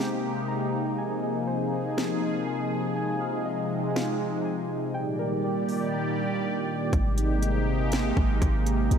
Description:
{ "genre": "hip hop, atmospheric cloud-rap", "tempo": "121 BPM", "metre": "4/4", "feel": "half-time", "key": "unclear", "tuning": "A4 = 440 Hz", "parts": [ { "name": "sweeping resonant pad", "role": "sustained chords", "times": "0.0-9.0 s", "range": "Bb2 to D5", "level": "-27 LUFS", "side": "equal", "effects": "chorus, sidechain pumping" }, { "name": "muted felt-like synth keys", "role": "arpeggios", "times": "0.0-6.9 s", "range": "C4 to Bb5", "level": "-34 LUFS", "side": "left 3 dB", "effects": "chorus, low-pass filter, analog delay" }, { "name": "trap drum kit", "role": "drums", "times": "0.0-9.0 s", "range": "hi-hat, kick drum, snare drum", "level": "-30 LUFS", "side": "equal", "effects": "none" }, { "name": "warm 808-style bass", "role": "bass", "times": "6.9-9.0 s", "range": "Ab1 to Bb1", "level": "-25 LUFS", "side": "equal", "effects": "none" } ], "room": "wet lush hall reverb, RT60 2.2 s", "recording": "dreamy mix soaked in reverb", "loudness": "-25 LUFS", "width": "side -7 dB against mid", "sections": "0.0-6.9 A section; 6.9-9.0 B section", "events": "none", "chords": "0.0 Abmaj9; 1.0 Bb9sus4; 3.0 Fm7; 4.9 Ebmaj7; 6.9 Abmaj9" }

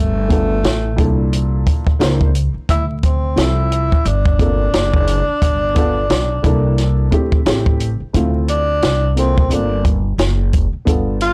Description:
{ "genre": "hip hop, jazz-hop", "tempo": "88 BPM", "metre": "4/4", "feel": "swing 59% on 16ths", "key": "unclear", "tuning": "A4 = 440 Hz", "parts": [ { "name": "mellow tenor saxophone", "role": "melody", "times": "0.0-11.3 s", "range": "A3 to F4", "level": "-22 LUFS", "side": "equal", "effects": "plate reverb" }, { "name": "upright bass", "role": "bass", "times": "0.0-11.3 s", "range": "F#1 to D2", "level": "-20 LUFS", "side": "equal", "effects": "tube saturation" }, { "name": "dark upright piano", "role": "accompaniment", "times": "0.3-11.3 s", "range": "Bb2 to C5", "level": "-24 LUFS", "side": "equal", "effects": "plate reverb" }, { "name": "compact cocktail drum kit", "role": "drums", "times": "0.3-11.3 s", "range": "hi-hat, kick drum, snare drum", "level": "-19 LUFS", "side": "equal", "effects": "none" } ], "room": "light reverb", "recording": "blown-out, overdriven recording, vinyl crackle, overdrive", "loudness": "-16 LUFS", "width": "mono", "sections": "0.0-8.1 A section; 8.1-11.3 B section", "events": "tenor saxophone solo 8.1-11.3", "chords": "0.0 G9; 1.0 C13; 2.7 Dm9; 4.1 Gm11; 5.4 G9; 6.4 C13; 7.5 Am7; 8.1 Dm9; 9.5 Gm11" }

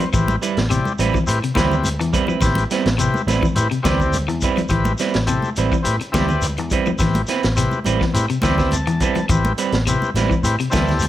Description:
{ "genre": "afrobeat", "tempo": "105 BPM", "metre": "4/4", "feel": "straight", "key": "A minor", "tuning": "A4 = 440 Hz", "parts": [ { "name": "combo organ", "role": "accompaniment", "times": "0.0-11.1 s", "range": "C4 to A5", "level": "-24 LUFS", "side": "left 3 dB", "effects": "none" }, { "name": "electric guitar at the edge of break-up", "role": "arpeggios", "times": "0.0-10.9 s", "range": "C3 to F3", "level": "-24 LUFS", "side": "left 5 dB", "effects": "none" }, { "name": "electric guitar at the edge of break-up", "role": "stabs", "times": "0.0-10.9 s", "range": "G3 to B4", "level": "-23 LUFS", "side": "right 7 dB", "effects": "none" }, { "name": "vintage drum kit", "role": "drums", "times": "0.0-11.1 s", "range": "hi-hat, kick drum, snare drum", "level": "-24 LUFS", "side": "equal", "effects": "none" }, { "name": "congas", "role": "percussion", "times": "0.0-11.1 s", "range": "none", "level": "-27 LUFS", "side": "right 1 dB", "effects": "none" }, { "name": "shekere", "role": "percussion", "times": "0.0-11.1 s", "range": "none", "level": "-29 LUFS", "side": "left 2 dB", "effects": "none" }, { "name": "vintage muted fingered electric bass", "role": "bass", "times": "0.1-11.1 s", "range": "A1 to A2", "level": "-22 LUFS", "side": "equal", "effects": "none" } ], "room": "moderate large studio reverb, RT60 1.2 s, studio ambience", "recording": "none", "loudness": "-16 LUFS", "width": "side -13 dB against mid", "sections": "0.0-11.1 A section", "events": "transistor combo organ fill 8.1-9.3", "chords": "0.0 Am9" }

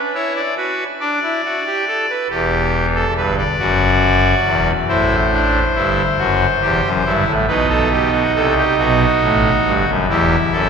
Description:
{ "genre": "classical, baroque-style 4-part fugue for pipe organ", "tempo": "46 BPM (dotted quarters)", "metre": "12/8", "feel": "straight", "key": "E minor", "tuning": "A4 = 441 Hz", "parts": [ { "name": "pipe organ, trumpet", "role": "solo", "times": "0.1-10.7 s", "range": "E1 to D5", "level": "-14 LUFS", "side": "equal", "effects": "none" } ], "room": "wet church reverb, RT60 3.5 s", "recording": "recorded in a church or concert hall", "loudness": "-14 LUFS", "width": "side -6 dB against mid", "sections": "0.0-10.7 A section", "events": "none", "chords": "0.0 Bm; 2.3 Em; 4.9 Am; 7.5 B7; 10.1 Em" }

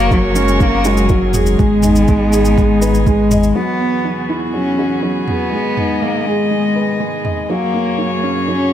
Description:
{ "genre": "piano and strings electronica", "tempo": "122 BPM", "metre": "4/4", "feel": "straight", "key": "G# minor", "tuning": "A4 = 440 Hz", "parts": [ { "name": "dark cello", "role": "melody", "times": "0.0-8.7 s", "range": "F#3 to C#4", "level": "-18 LUFS", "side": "left 2 dB", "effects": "none" }, { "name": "dark string quartet", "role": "sustained chords", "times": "0.0-8.7 s", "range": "E2 to D#5", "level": "-22 LUFS", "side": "left 1 dB", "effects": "sidechain pumping" }, { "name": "felt-muted upright piano", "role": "riff", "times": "0.0-8.7 s", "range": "F#3 to D#5", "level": "-18 LUFS", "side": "right 1 dB", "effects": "none" }, { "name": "warm sub bass", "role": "bass", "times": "0.0-3.5 s", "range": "F#1 to G#1", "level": "-17 LUFS", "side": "equal", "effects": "sidechain pumping" }, { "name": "electronic kick drum", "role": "drums", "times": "0.1-3.2 s", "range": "none", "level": "-16 LUFS", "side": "equal", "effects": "overdrive" }, { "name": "electronic shaker and toms", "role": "drums", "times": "0.1-7.3 s", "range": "none", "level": "-23 LUFS", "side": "right 1 dB", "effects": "none" } ], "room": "light reverb, small room ambience", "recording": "none", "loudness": "-13 LUFS", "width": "side -10 dB against mid", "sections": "0.0-3.6 A section; 3.6-8.7 B section", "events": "none", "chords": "0.0 F#add9; 1.6 G#m; 3.6 Eadd9; 5.5 G#m; 7.5 F#add9" }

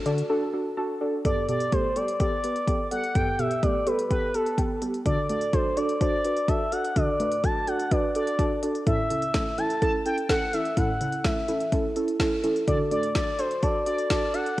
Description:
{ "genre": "synth-pop", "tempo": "126 BPM", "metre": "4/4", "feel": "straight", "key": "G major", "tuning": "A4 = 440 Hz", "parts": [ { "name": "warbly dusty pluck", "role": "arpeggios", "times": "0.0-14.6 s", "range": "G2 to A5", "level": "-34 LUFS", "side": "left 1 dB", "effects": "chorus" }, { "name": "muted felt-like synth keys", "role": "accompaniment", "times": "0.1-14.5 s", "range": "B3 to C5", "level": "-28 LUFS", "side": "right 1 dB", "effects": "chorus, phaser" }, { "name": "deep house drum kit", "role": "drums", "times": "0.1-14.6 s", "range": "hi-hat, kick drum, snare drum", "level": "-28 LUFS", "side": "equal", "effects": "cassette tape" }, { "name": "expressive synth lead", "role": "melody", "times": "1.2-14.6 s", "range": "A4 to A5", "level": "-27 LUFS", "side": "equal", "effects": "chorus, cassette tape" } ], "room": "moderate lush hall reverb, RT60 2.1 s", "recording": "home recording on cassette", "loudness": "-23 LUFS", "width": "side -16 dB against mid", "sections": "0.0-1.2 A section; 1.2-14.6 B section", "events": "silent gap 0.3-1.2", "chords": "0.0 D; 1.2 Gadd9; 5.1 D; 8.9 A; 12.7 D" }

